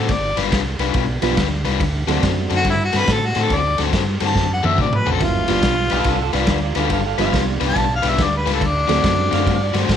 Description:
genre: electric blues shuffle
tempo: 141 BPM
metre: 4/4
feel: swing 64% on 8ths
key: unclear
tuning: A4 = 440 Hz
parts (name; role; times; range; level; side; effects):
- mellow harmonica; melody; 0.0-9.9 s; D4 to A5; -21 LUFS; left 1 dB; none
- overdriven semi-hollow guitar; riff; 0.0-10.0 s; D3 to B4; -22 LUFS; left 13 dB; spring reverb
- fingered electric bass; bass; 0.0-10.0 s; G1 to A2; -22 LUFS; right 1 dB; none
- raw garage drum kit; drums; 0.1-10.0 s; kick drum, ride cymbal, snare drum, toms; -22 LUFS; right 1 dB; none
- warm upright piano; accompaniment; 1.2-2.6, 5.2-9.4 s; E3 to F#4; -24 LUFS; right 12 dB; none
- electric guitar through a small old amp; second line; 5.9-10.0 s; F4 to F5; -25 LUFS; right 15 dB; none
room: studio reverb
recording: 1960s-style stereo with parts hard left and right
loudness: -16 LUFS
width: side -9 dB against mid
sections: 0.0-10.0 A section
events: drum fill 4.4-5.2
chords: 0.1 G7; 1.8 D7; 5.2 G7; 8.6 D7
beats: | 0.10 0.53 0.95 1.38 | 1.80 2.23 2.66 3.08 | 3.51 3.94 4.36 4.79 | 5.21 5.64 6.06 6.49 | 6.92 7.34 7.77 8.19 | 8.62 9.04 9.47 9.90

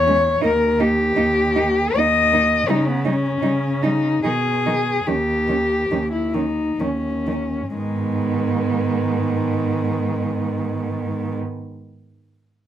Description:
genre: classical, lyrical piece for cello ensemble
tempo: 61-84 BPM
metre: 3/4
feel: rubato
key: G# minor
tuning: A4 = 440 Hz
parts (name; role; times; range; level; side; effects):
- muted cello; melody; 0.0-11.4 s; G#3 to D#5; -20 LUFS; left 3 dB; none
- muted cello; bass; 0.0-11.3 s; D#2 to C#3; -24 LUFS; right 2 dB; none
- muted cello; second line; 0.1-11.4 s; B3 to D#4; -26 LUFS; right 8 dB; none
- muted cello; accompaniment; 0.1-11.4 s; D#3 to A#3; -27 LUFS; left 1 dB; none
room: light reverb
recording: none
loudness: -18 LUFS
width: side -10 dB against mid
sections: 0.0-7.8 A section; 7.8-10.6 B section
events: slowing down 1.6-7.8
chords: 0.4 D#; 2.7 D#7/C#; 4.2 G#m/B; 5.1 D#7; 7.8 G#m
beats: | 0.44 1.18 1.96 | 2.68 3.42 4.25 | 5.07 5.91 6.79 | 7.75 8.70 9.65

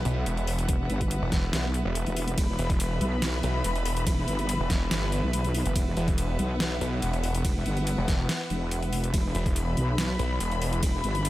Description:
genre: heavy wobble dubstep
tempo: 142 BPM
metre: 4/4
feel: half-time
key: E minor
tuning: A4 = 444 Hz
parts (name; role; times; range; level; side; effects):
- warm studio string section; sustained chords; 0.0-11.3 s; E3 to B5; -33 LUFS; left 1 dB; vintage 12-bit sampler grit, sidechain pumping
- wobble bass; bass; 0.0-11.3 s; E1 to B1; -28 LUFS; equal; chorus, overdrive
- snarling distorted saw bass; bass; 0.1-10.8 s; E1 to B1; -27 LUFS; equal; overdrive
- dubstep drum kit; drums; 0.1-11.3 s; hi-hat, ride cymbal, snare drum; -33 LUFS; equal; overdrive
- electronic kick drum; drums; 0.7-10.9 s; none; -27 LUFS; equal; overdrive
room: digital ambience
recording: none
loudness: -25 LUFS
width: side -16 dB against mid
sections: 0.0-11.3 A section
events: none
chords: 0.0 E5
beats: 0.26 | 0.69 1.11 1.53 1.95 | 2.38 2.80 3.22 3.64 | 4.07 4.49 4.91 5.33 | 5.76 6.18 6.60 7.02 | 7.45 7.87 8.29 8.71 | 9.14 9.56 9.98 10.40 | 10.83 11.25

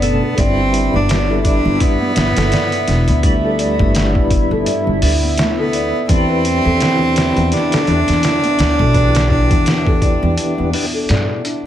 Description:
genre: trip hop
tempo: 84 BPM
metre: 4/4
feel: swing 57% on 16ths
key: unclear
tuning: A4 = 439 Hz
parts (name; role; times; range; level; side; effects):
- clear cello; melody; 0.0-11.1 s; A3 to D4; -18 LUFS; right 1 dB; tape echo
- percussive tonewheel organ; accompaniment; 0.0-10.9 s; B2 to B4; -22 LUFS; equal; slow rotary speaker, tremolo, tape echo
- dark analog pad; sustained chords; 0.0-11.7 s; D4 to E5; -25 LUFS; right 1 dB; chorus, phaser
- felt-muted upright piano; arpeggios; 0.0-11.7 s; B3 to D5; -23 LUFS; left 2 dB; vintage 12-bit sampler grit, tape echo
- upright bass; bass; 0.0-11.3 s; E1 to G2; -18 LUFS; equal; none
- trip hop sampler-style drum kit; drums; 0.0-11.6 s; hi-hat, kick drum, snare drum; -18 LUFS; equal; none
room: little or no reverb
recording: none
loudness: -13 LUFS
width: side -11 dB against mid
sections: 0.0-11.7 A section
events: break 10.4-11.7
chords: 0.4 G6; 6.1 Em7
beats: | 0.38 1.09 1.81 2.52 | 3.23 3.95 4.66 5.38 | 6.09 6.81 7.52 8.23 | 8.95 9.66 10.38 11.09

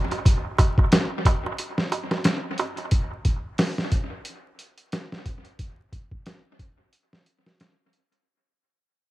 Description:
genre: trip hop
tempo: 90 BPM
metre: 4/4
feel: swing 57% on 16ths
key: none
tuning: none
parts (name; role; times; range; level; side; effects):
- trip hop sampler-style drum kit; drums; 0.1-8.3 s; hi-hat, kick drum, snare drum; -22 LUFS; equal; dub echo
- darbuka; percussion; 0.1-2.9 s; none; -30 LUFS; right 4 dB; dub echo
room: light reverb, digital ambience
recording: echo-heavy mix, vinyl crackle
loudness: -21 LUFS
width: side -17 dB against mid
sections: 0.0-8.2 A section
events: fade-out 0.0-8.2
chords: none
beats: | 0.25 0.92 1.58 2.25 | 2.92 3.58 4.25 4.92 | 5.58 6.25 6.92 7.58

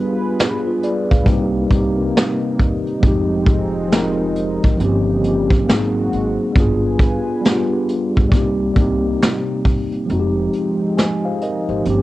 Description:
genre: lo-fi hip hop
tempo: 68 BPM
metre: 4/4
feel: swing 61% on 16ths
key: F minor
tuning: A4 = 440 Hz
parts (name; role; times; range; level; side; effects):
- mellow tine electric piano; accompaniment; 0.0-12.0 s; F3 to Ab5; -19 LUFS; equal; medium stereo tremolo, low-pass filter, cassette tape
- dark analog pad; sustained chords; 0.0-12.0 s; C3 to Ab5; -25 LUFS; right 1 dB; chorus, low-pass filter, cassette tape
- vintage brush drum kit; drums; 0.4-12.0 s; hi-hat, kick drum, snare drum; -16 LUFS; equal; cassette tape
- upright bass; bass; 1.1-12.0 s; F1 to Eb2; -24 LUFS; equal; none
room: moderate booth ambience, RT60 0.2 s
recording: home recording on cassette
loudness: -15 LUFS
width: side -17 dB against mid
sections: 0.0-10.1 A section; 10.1-12.0 B section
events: kick muted 10.1-12.0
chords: 0.0 G7b9; 1.3 Cm7; 3.0 Fm7; 4.8 Eb13/G; 5.7 Ab9; 6.6 G7b9; 8.3 Cm7; 10.1 Fm7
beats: 0.38 1.27 2.15 | 3.03 3.91 4.80 5.68 | 6.56 7.44 8.33 9.21 | 10.09 10.97 11.86

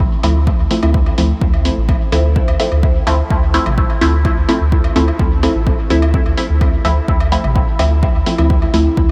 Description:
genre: dub techno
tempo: 127 BPM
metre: 4/4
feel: straight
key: D minor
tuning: A4 = 439 Hz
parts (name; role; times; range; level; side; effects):
- soft dub sub bass; bass; 0.0-9.1 s; A1 to D2; -18 LUFS; equal; sidechain pumping
- electronic kick drum; drums; 0.0-9.1 s; none; -19 LUFS; equal; overdrive
- filtered dub chord stab; stabs; 0.2-8.9 s; F3 to E4; -20 LUFS; equal; phaser, sidechain pumping, dub echo
- electronic hi-hat; drums; 0.2-8.8 s; none; -30 LUFS; equal; none
- electronic woodblock and toms; percussion; 0.2-9.1 s; none; -31 LUFS; equal; overdrive, sidechain pumping on toms, sidechain pumping on perc, dub echo
- warbly tape-like pad; sustained chords; 9.0-9.1 s; none; barely audible; none; none
room: moderate huge ambient reverb, RT60 7.9 s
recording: dreamy mix soaked in reverb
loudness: -14 LUFS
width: mono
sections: 0.0-9.1 A section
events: none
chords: 0.0 Dm9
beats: 0.00 0.47 0.94 | 1.42 1.89 2.36 2.83 | 3.31 3.78 4.25 4.72 | 5.20 5.67 6.14 6.61 | 7.08 7.56 8.03 8.50 | 8.97

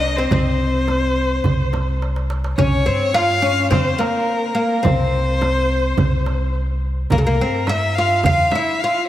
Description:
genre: Turkish makam ensemble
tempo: 106 BPM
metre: 4/4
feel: straight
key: C makam hicaz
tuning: A4 = 439 Hz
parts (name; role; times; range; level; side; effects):
- oud; melody; 0.0-9.1 s; A3-40c to F4; -20 LUFS; left 1 dB; none
- rich violin; second line; 0.0-9.1 s; Bb4 to F5; -22 LUFS; left 2 dB; none
- upright bass; bass; 0.0-8.5 s; C2 to G2; -21 LUFS; equal; none
- darbuka; percussion; 0.3-8.9 s; none; -25 LUFS; right 3 dB; none
- frame drum; percussion; 0.3-8.7 s; none; -24 LUFS; right 2 dB; none
room: moderate lush hall reverb, RT60 2.6 s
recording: dreamy mix soaked in reverb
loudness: -16 LUFS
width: side -13 dB against mid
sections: 0.0-2.6 A section; 2.6-9.1 B section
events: drum fill 2.0-2.6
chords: none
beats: | 0.31 0.88 1.45 2.01 | 2.58 3.15 3.71 4.28 | 4.84 5.41 5.98 6.54 | 7.11 7.67 8.24 8.81

